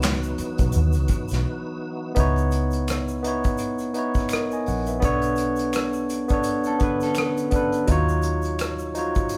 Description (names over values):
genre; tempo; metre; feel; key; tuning
R&B, neo-soul; 84 BPM; 4/4; swing 58% on 16ths; unclear; A4 = 439 Hz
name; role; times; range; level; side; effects
barky tine electric piano; accompaniment; 0.0-9.4 s; D3 to G#5; -27 LUFS; equal; overdrive
tonewheel organ; sustained chords; 0.0-2.1 s; E3 to F#4; -35 LUFS; equal; chorus vibrato, slow rotary speaker
vintage muted fingered electric bass; bass; 0.0-9.1 s; A#1 to D#2; -27 LUFS; equal; none
unplugged drum kit; drums; 0.0-9.4 s; handclaps, hi-hat, kick drum, rim click, snare drum; -28 LUFS; equal; none
finger snaps and tube shaker; percussion; 0.0-9.4 s; none; -43 LUFS; equal; none
clean electric guitar; second line; 6.7-7.9 s; C#4 to B4; -34 LUFS; equal; phaser
room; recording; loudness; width
moderate stone room reverb, RT60 1.0 s; band playing live in one room; -24 LUFS; mono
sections
0.0-2.2 A section; 2.2-9.4 B section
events
tine electric piano solo 0.0-2.2; break 1.5-2.2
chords
0.0 C#m11; 2.2 C#m9; 5.0 Bm9; 7.9 D#m9